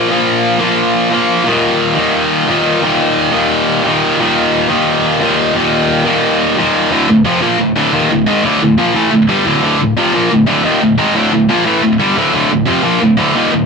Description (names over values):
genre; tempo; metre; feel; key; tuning
metal; 176 BPM; 4/4; straight; D phrygian; A4 = 439 Hz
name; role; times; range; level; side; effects
tight distorted guitar; solo; 0.0-13.7 s; D2 to Bb3; -10 LUFS; equal; distortion
room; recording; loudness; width
light reverb; band playing live in one room; -10 LUFS; side -5 dB against mid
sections
0.0-6.9 A section; 6.9-13.7 B section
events
none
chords
0.0 Bb5; 1.5 Eb5; 6.9 Dm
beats
| 0.09 0.43 0.77 1.11 | 1.46 1.80 2.14 2.48 | 2.82 3.16 3.50 3.84 | 4.18 4.52 4.86 5.20 | 5.54 5.88 6.22 6.57 | 6.91 7.25 7.59 7.93 | 8.27 8.61 8.95 9.29 | 9.63 9.97 10.30 10.64 | 10.98 11.32 11.66 12.00 | 12.34 12.68 13.02 13.35